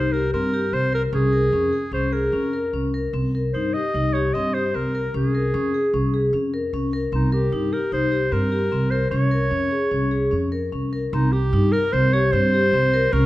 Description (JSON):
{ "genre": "contemporary instrumental, chamber music in an uneven meter", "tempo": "150 BPM", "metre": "5/4", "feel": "straight", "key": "C phrygian", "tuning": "A4 = 440 Hz", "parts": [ { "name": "bright clarinet", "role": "melody", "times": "0.0-13.3 s", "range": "Eb4 to Eb5", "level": "-23 LUFS", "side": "right 1 dB", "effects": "none" }, { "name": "vibraphone with medium hard mallets", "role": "arpeggios", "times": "0.0-13.3 s", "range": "C4 to Bb4", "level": "-24 LUFS", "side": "left 2 dB", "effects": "none" }, { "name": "upright bass", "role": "bass", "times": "0.0-13.3 s", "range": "C2 to G2", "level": "-23 LUFS", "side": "right 1 dB", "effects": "none" } ], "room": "wet recital hall reverb, RT60 1.4 s", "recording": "dark, warm production", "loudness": "-19 LUFS", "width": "side -16 dB against mid", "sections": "0.0-11.1 A section; 11.1-13.3 A section", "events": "none", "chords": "0.0 C7(no3); 1.1 Bbm7/C; 3.1 Cm7; 5.1 Bbm7/C; 7.1 Cm7; 9.1 Bbm7/C; 11.1 C7(no3)" }